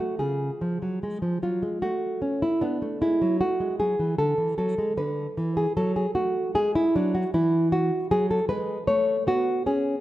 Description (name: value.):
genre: classical, baroque-style dance for nylon-string guitar.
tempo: 76 BPM.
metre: 3/4.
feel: rubato.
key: unclear.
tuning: A4 = 440 Hz.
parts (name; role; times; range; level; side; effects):
nylon-string guitar; solo; 0.0-10.0 s; C#3 to C#5; -23 LUFS; equal; none.
room: moderate concert hall reverb, RT60 2.3 s.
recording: none.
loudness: -23 LUFS.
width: side -14 dB against mid.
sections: 0.2-10.0 A section.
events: none.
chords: 0.2 C#; 1.8 N.C.; 2.6 Bm7 (rootless); 6.6 E9; 7.3 Eadd9; 8.9 A.